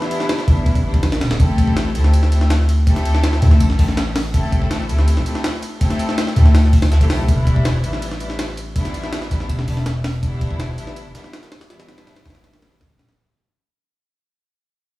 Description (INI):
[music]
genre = drum and bass, jungle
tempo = 163 BPM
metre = 4/4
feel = straight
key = unclear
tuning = A4 = 442 Hz
[part]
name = clear symphonic string section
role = sustained chords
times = 0.0-12.8 s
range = E3 to A4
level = -24 LUFS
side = left 2 dB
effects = none
[part]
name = jungle sampler-style drum kit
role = drums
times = 0.0-13.2 s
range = hi-hat, kick drum, ride cymbal, snare drum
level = -21 LUFS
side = equal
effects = studio reverb
[part]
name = long sustained 808-style bass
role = bass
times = 0.5-13.2 s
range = D1 to D2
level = -16 LUFS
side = equal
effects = tube saturation
[part]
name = breakbeat sampler-style drum kit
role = drums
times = 1.4-13.1 s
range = hi-hat, snare drum, tambourine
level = -35 LUFS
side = right 1 dB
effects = high-pass filter on perc, studio reverb, high-pass filter on snare, high-pass filter on hats
[sound]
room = little or no reverb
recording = played on a big sound system in a bare room, large studio reverb, small room ambience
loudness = -15 LUFS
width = side -18 dB against mid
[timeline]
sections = 0.0-13.2 A section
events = drop 0.0-13.2; fade-out 7.3-13.2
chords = 0.0 Em7; 1.4 Am7; 7.3 Em7